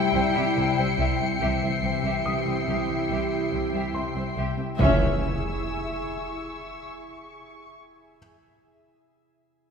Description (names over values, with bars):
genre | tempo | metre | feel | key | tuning
cinematic, suspense film score | 71 BPM | 4/4 | straight | C# harmonic minor | A4 = 440 Hz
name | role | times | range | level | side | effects
muted studio violin section | melody | 0.0-5.3 s | E5 to G5 | -30 LUFS | left 2 dB | none
muted studio viola section | accompaniment | 0.0-5.3 s | C4 to E4 | -33 LUFS | right 1 dB | none
dark French horn section | sustained chords | 0.0-5.2 s | E3 to G3 | -32 LUFS | left 6 dB | none
soft additive organ-like pad | sustained chords | 0.0-5.3 s | E4 to E5 | -32 LUFS | right 3 dB | ensemble chorus, built-in reverb
concert harp | riff | 0.0-4.8 s | C3 to C4 | -34 LUFS | left 9 dB | none
bright baby grand piano | texture | 0.0-4.8 s | A5 to D#6 | -40 LUFS | left 1 dB | none
muted studio violin section | texture | 0.0-7.7 s | C#6 to C#7 | -34 LUFS | left 4 dB | none
muted studio violin section | second line | 0.1-5.3 s | G4 to E5 | -33 LUFS | left 1 dB | none
muted studio cello section | bass | 0.1-5.3 s | C2 to C#2 | -31 LUFS | right 2 dB | none
muted studio double bass section | bass | 0.1-5.3 s | C2 to C#2 | -32 LUFS | right 2 dB | none
impact | sound effects | 4.8-8.2 s | none | -27 LUFS | equal | none
room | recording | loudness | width
wet scoring stage reverb, RT60 1.8 s | minimal, uncompressed stereo recording | -23 LUFS | side -6 dB against mid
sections
0.0-4.8 A section; 4.8-8.2 B section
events
impact 4.8-8.2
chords
0.0 C; 4.8 C#m